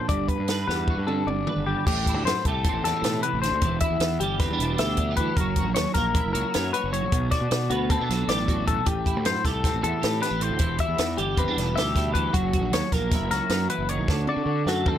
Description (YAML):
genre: math rock and midwest emo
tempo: 309 BPM (eighths)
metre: 9/8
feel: straight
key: unclear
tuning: A4 = 440 Hz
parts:
  - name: twelve-string electric guitar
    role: accompaniment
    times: 0.0-15.0 s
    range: G2 to C#5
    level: -28 LUFS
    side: right 6 dB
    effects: ensemble chorus
  - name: clean electric guitar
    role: arpeggios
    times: 0.0-15.0 s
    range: F#4 to E5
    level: -28 LUFS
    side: left 8 dB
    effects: wide subtle chorus
  - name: fuzz fingered electric bass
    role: bass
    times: 0.1-14.9 s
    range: E1 to D3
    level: -28 LUFS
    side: equal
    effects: overdrive
  - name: compact cocktail drum kit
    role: drums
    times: 0.1-15.0 s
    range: crash cymbal, hi-hat, kick drum, snare drum, toms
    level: -27 LUFS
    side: right 1 dB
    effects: none
room: light reverb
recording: none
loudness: -22 LUFS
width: side -10 dB against mid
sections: 0.0-1.9 A section; 1.9-15.0 B section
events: drum fill 0.7-1.9, 14.1-15.0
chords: 0.1 Gmaj7; 1.9 Am7; 3.6 Em7; 5.4 F#7; 7.1 Bm7; 8.9 Am7; 10.6 Em7; 12.4 F#7; 14.1 D7